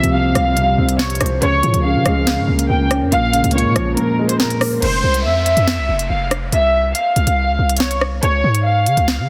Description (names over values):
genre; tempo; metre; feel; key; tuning
hip hop, drill; 141 BPM; 4/4; half-time; F harmonic minor; A4 = 442 Hz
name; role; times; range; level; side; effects
warm studio violin section; melody; 0.0-9.3 s; Bb4 to G5; -20 LUFS; equal; low-pass filter
dark baby grand piano; accompaniment; 0.0-4.8 s; Bb2 to C5; -21 LUFS; equal; low-pass filter
warbly tape-like pad; sustained chords; 0.0-4.8 s; F3 to Bb4; -29 LUFS; equal; chorus, built-in reverb
hard-hitting 808-style bass; bass; 0.0-9.3 s; F1 to Db3; -21 LUFS; equal; none
drill drum kit; drums; 0.0-9.2 s; crash cymbal, hi-hat, rim click, snare drum; -23 LUFS; equal; none
downlifter; sound effects; 4.8-8.2 s; none; -33 LUFS; equal; none
room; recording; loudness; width
light reverb, digital ambience; dense, heavily limited modern master; -16 LUFS; mono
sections
0.0-4.8 A section; 4.8-9.3 B section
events
kick muted 4.0-4.8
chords
0.0 Csus4; 1.4 Db6; 3.1 Bbm7; 4.8 F5; 6.5 Csus4; 8.2 Db